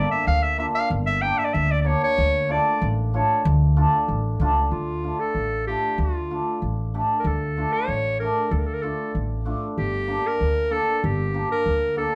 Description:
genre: klezmer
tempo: 95 BPM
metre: 2/4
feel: straight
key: D harmonic minor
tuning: A4 = 440 Hz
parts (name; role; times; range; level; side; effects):
- bright clarinet; melody; 0.0-12.2 s; F4 to G5; -27 LUFS; equal; none
- cimbalom; accompaniment; 0.0-12.1 s; A3 to A4; -28 LUFS; equal; none
- upright bass; bass; 0.3-12.0 s; G1 to D2; -26 LUFS; equal; none
room: moderate studio reverb, RT60 0.6 s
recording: heard from further back in the room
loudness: -23 LUFS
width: mono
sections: 0.0-4.7 A section; 4.7-12.2 B section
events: clarinet solo 0.0-4.7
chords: 0.0 Gm; 2.2 Dm; 9.8 Gm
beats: 0.26 | 0.90 1.54 | 2.18 2.81 | 3.45 4.08 | 4.72 5.35 | 5.99 6.62 | 7.25 7.88 | 8.52 9.14 | 9.77 10.40 | 11.03 11.65

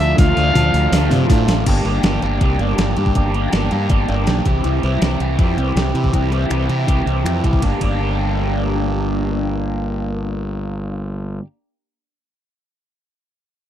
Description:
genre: indie rock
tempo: 161 BPM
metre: 4/4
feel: straight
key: G dorian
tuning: A4 = 441 Hz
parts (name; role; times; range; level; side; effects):
- clear trumpet; melody; 0.0-1.3 s; E5 to F5; -19 LUFS; left 1 dB; slapback echo
- crunchy overdriven guitar; riff; 0.0-11.5 s; E3 to G4; -20 LUFS; equal; phaser
- fuzz fingered electric bass; bass; 0.0-11.4 s; G1 to C3; -19 LUFS; equal; overdrive
- gated 80s digital drum machine; drums; 0.0-7.9 s; crash cymbal, finger snaps, hi-hat, kick drum, ride cymbal, snare drum, toms; -18 LUFS; equal; gated reverb, gated reverb snare, overdrive
room: little or no reverb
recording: dry, close 1970s-style studio recording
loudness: -15 LUFS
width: side -10 dB against mid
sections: 0.0-1.7 A section; 1.7-7.6 B section; 7.6-10.6 C section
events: drum fill 0.2-1.7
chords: 0.0 Dm; 1.7 Gm; 4.5 C; 7.6 Gm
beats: | 0.18 0.55 0.92 1.29 | 1.67 2.04 2.41 2.78 | 3.15 3.53 3.90 4.27 | 4.64 5.01 5.39 5.76 | 6.13 6.51 6.88 7.25 | 7.62 8.00 8.37 8.74 | 9.11 9.49 9.86 10.23

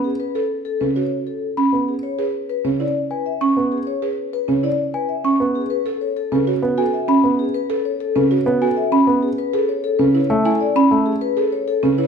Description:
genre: classical, minimalist pattern music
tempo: 196 BPM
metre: 6/4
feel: straight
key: B dorian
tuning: A4 = 438 Hz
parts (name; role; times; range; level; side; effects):
- vibraphone with soft mallets; melody; 0.0-12.1 s; G#4 to E5; -23 LUFS; left 8 dB; none
- dark grand piano; accompaniment; 0.0-12.0 s; C#3 to B3; -22 LUFS; equal; none
- buzzing marimba with soft mallets; arpeggios; 0.4-12.1 s; C#4 to A4; -20 LUFS; right 5 dB; none
- celesta; arpeggios; 1.6-11.0 s; G#5 to C#6; -23 LUFS; left 5 dB; none
room: moderate recital hall reverb, RT60 1.4 s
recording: none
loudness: -17 LUFS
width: side -6 dB against mid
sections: 0.0-12.1 A section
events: none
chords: 0.0 F#m; 2.0 E6 (rootless); 5.7 A69; 9.4 B9sus4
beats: | 0.20 0.50 0.81 1.11 1.42 1.73 | 2.03 2.34 2.65 2.95 3.26 3.56 | 3.87 4.18 4.48 4.79 5.09 5.40 | 5.71 6.01 6.32 6.62 6.93 7.24 | 7.54 7.85 8.16 8.46 8.77 9.07 | 9.38 9.69 9.99 10.30 10.61 10.91 | 11.22 11.52 11.83

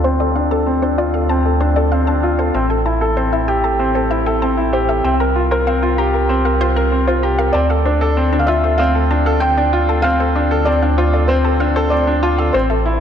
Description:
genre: electronica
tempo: 96 BPM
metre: 4/4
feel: straight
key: D minor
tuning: A4 = 440 Hz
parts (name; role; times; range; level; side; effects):
- analog pluck; arpeggios; 0.0-12.8 s; C5 to F6; -25 LUFS; left 2 dB; chorus, digital delay
- clear grand piano; riff; 0.0-13.0 s; C4 to Bb4; -16 LUFS; left 1 dB; low-pass filter, digital delay
- dark detuned saw bass; bass; 0.0-13.0 s; A1 to D2; -18 LUFS; right 1 dB; none
- felt-muted upright piano; melody; 7.5-13.0 s; C5 to G5; -19 LUFS; right 1 dB; digital delay
room: moderate concert hall reverb, RT60 2.5 s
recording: dark, warm production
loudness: -14 LUFS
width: side -8 dB against mid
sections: 0.0-13.0 A section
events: filter sweep on grand piano 0.0-13.0; filter sweep on synth arpeggio sound 0.0-13.0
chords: 0.0 Dm7; 2.5 Am7; 5.0 C7sus4; 7.5 Dm7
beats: | 0.04 0.67 1.29 1.92 | 2.54 3.17 3.79 4.42 | 5.04 5.67 6.29 6.92 | 7.54 8.17 8.79 9.42 | 10.04 10.67 11.29 11.92 | 12.54

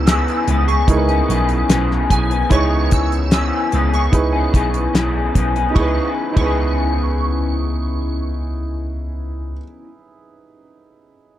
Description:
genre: indie pop, bedroom pop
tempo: 74 BPM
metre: 4/4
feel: straight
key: C# minor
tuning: A4 = 440 Hz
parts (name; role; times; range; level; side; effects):
- shimmering bell with halo; second line; 0.0-8.2 s; G#5 to E6; -27 LUFS; right 6 dB; ensemble chorus, phaser, tape echo
- clear upright piano; accompaniment; 0.0-11.4 s; D#4 to C#5; -24 LUFS; right 5 dB; cassette tape
- electric guitar through a small old amp; accompaniment; 0.0-10.0 s; C#3 to G#4; -21 LUFS; left 4 dB; analog chorus, vibrato effect
- mellow tine electric piano; bass; 0.0-9.6 s; B1 to C#2; -19 LUFS; equal; medium stereo tremolo
- damped 70s drum kit; drums; 0.1-6.6 s; hi-hat, kick drum, ride cymbal, snare drum; -15 LUFS; equal; none
room: little or no reverb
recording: dry, close 1970s-style studio recording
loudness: -15 LUFS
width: side -12 dB against mid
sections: 0.0-5.8 A section; 5.8-9.0 B section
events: none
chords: 0.0 C#m7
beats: 0.07 0.88 1.70 | 2.51 3.32 4.13 4.94 | 5.75 6.57 7.38 8.19

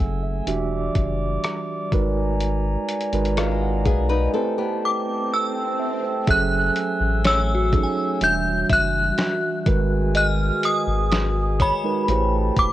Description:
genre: contemporary R&B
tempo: 62 BPM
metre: 4/4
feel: straight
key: unclear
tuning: A4 = 437 Hz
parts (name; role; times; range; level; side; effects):
- mellow tine electric piano; accompaniment; 0.0-12.7 s; D#3 to G#5; -26 LUFS; right 6 dB; medium stereo tremolo, cassette tape
- glass harmonica; sustained chords; 0.0-12.7 s; G3 to E6; -29 LUFS; left 2 dB; sidechain pumping, cassette tape
- round analog bass; bass; 0.0-12.7 s; E1 to B1; -24 LUFS; left 1 dB; none
- dusty soul sampler-style drum kit; drums; 0.5-12.7 s; hi-hat, kick drum, rim click, snare drum; -23 LUFS; left 1 dB; cassette tape
- swell; sound effects; 4.8-6.3 s; none; -33 LUFS; right 2 dB; none
- nylon-string guitar; arpeggios; 3.4-6.0 s; G#3 to B4; -27 LUFS; left 6 dB; cassette tape, analog delay
- synth chime; melody; 4.9-12.7 s; B5 to G6; -22 LUFS; equal; ensemble chorus, phaser, tremolo, cassette tape
- glassy synth bell; texture; 7.2-12.5 s; F#4 to G#5; -30 LUFS; left 2 dB; chorus, cassette tape, analog delay
room: little or no reverb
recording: home recording on cassette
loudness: -19 LUFS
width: side -14 dB against mid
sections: 0.0-6.3 A section; 6.3-12.7 B section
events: swell 4.8-6.3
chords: 0.5 Em9; 1.9 G#m9; 4.3 Am9; 6.3 F#m9; 8.2 Em9; 9.7 G#m9; 12.1 Am9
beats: 0.47 1.44 | 2.40 3.37 4.34 5.31 | 6.28 7.24 8.21 9.18 | 10.15 11.12 12.08

